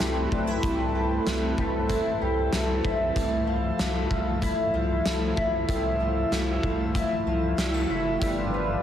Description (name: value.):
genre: dream pop.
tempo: 95 BPM.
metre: 4/4.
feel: straight.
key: unclear.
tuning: A4 = 441 Hz.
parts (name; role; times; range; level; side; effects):
phased analog pad; sustained chords; 0.0-8.8 s; F3 to B4; -30 LUFS; equal; phaser, chorus, shimmer reverb.
fingerpicked twelve-string acoustic guitar; arpeggios; 0.0-8.8 s; G2 to E4; -28 LUFS; left 2 dB; analog chorus, tape echo, shimmer reverb.
round analog bass; bass; 0.0-8.8 s; F1 to C2; -30 LUFS; equal; none.
oversized low-tuned drum kit; drums; 0.0-8.4 s; hi-hat, kick drum, snare drum; -30 LUFS; equal; none.
room: wet small room reverb, RT60 0.5 s.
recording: heavily compressed radio sound.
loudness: -23 LUFS.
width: side -10 dB against mid.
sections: 0.0-8.8 A section.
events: none.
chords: 0.0 C6; 3.2 Fmaj7; 8.2 G7.